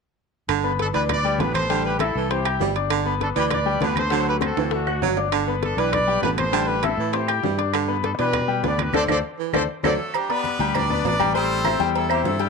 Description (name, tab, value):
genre	latin, salsa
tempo	199 BPM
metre	4/4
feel	straight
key	G major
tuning	A4 = 440 Hz
part	breathy baritone saxophone	second line	0.5-10.0 s	D3 to G3	-27 LUFS	right 14 dB	slapback echo
part	fingered electric bass	bass	0.5-12.5 s	G1 to B2	-27 LUFS	right 1 dB	none
part	bongos and cowbell	percussion	0.5-12.4 s	none	-34 LUFS	left 13 dB	none
part	claves	percussion	0.5-12.2 s	none	-32 LUFS	right 16 dB	none
part	congas	percussion	0.5-12.5 s	none	-32 LUFS	left 9 dB	none
part	timbales and agogo bells	percussion	0.5-12.5 s	none	-29 LUFS	right 15 dB	none
part	bright grand piano	accompaniment	0.6-12.5 s	F#3 to G6	-25 LUFS	left 12 dB	none
part	clear trumpet section	melody	0.8-9.9 s	D4 to D5	-25 LUFS	right 1 dB	none
part	brilliant horn section	melody	9.8-12.5 s	G3 to D5	-26 LUFS	right 1 dB	none
room	moderate spring reverb, RT60 1.3 s, small room reverb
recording	1960s-style stereo with parts hard left and right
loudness	-20 LUFS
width	side -4 dB against mid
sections	0.5-10.1 A section; 10.1-12.5 B section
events	drum fill 4.6-5.3, 9.7-10.1; band accent 8.9-10.1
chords	0.5 G; 1.7 Am7; 2.9 G; 4.1 D7; 5.3 G; 6.5 Am7; 7.7 G; 8.9 D7; 10.1 G; 11.3 Am7